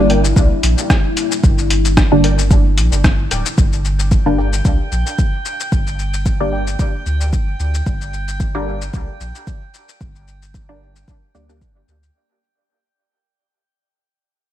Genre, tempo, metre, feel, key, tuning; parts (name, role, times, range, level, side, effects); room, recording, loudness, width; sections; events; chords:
dub techno; 112 BPM; 4/4; swing 55% on 16ths; G dorian; A4 = 440 Hz
deep dark ambient pad; sustained chords; 0.0-3.6 s; G3 to E4; -24 LUFS; left 4 dB; chorus, built-in reverb, sidechain pumping
filtered dub chord stab; stabs; 0.0-11.7 s; D3 to D4; -19 LUFS; equal; chorus, phaser, sidechain pumping, dub echo
warm sub bass; bass; 0.0-12.1 s; D1 to D2; -18 LUFS; equal; sidechain pumping
filtered dub chord stab; riff; 0.1-12.0 s; Bb4 to G5; -30 LUFS; left 2 dB; phaser, lush chorus, sidechain pumping, dub echo
lo-fi sampler-style drum kit; drums; 0.1-12.1 s; cabasa, hi-hat, rim click; -22 LUFS; left 2 dB; overdrive, studio ambience, dub echo
electronic kick drum; drums; 0.4-11.7 s; -15 LUFS; equal; studio ambience
drifting glass-harmonics texture; texture; 4.0-12.2 s; G5; -30 LUFS; right 3 dB; chorus, built-in reverb, sidechain pumping
digital ambience; -14 LUFS; side -12 dB against mid
0.0-3.6 A section; 3.6-12.2 B section
fade-out 3.6-12.2
0.0 Gm